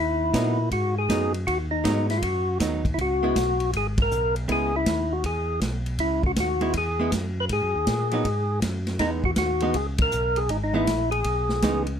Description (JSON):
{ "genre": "soul jazz organ trio", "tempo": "160 BPM", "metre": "4/4", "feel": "swing 65% on 8ths", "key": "unclear", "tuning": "A4 = 438 Hz", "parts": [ { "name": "percussive tonewheel organ", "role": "melody", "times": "0.0-11.8 s", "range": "D#4 to B4", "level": "-25 LUFS", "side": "left 1 dB", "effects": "slow rotary speaker, overdrive" }, { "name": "tonewheel organ", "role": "bass", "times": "0.0-12.0 s", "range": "G#1 to A#2", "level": "-28 LUFS", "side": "equal", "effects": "overdrive, chorus vibrato, slow rotary speaker" }, { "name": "archtop guitar, miked and amplified", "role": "accompaniment", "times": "0.3-11.9 s", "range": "E3 to E4", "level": "-27 LUFS", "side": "right 4 dB", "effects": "none" }, { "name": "vintage drum kit", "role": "drums", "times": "0.3-11.9 s", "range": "hi-hat, kick drum, ride cymbal, snare drum", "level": "-29 LUFS", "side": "equal", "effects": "none" } ], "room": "light reverb", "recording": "none", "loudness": "-22 LUFS", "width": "side -8 dB against mid", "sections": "0.0-12.0 A section", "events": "band accent 3.9, 9.9", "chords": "0.0 G#m7; 3.0 C#m7; 7.5 G#7(no3); 9.0 Emaj7" }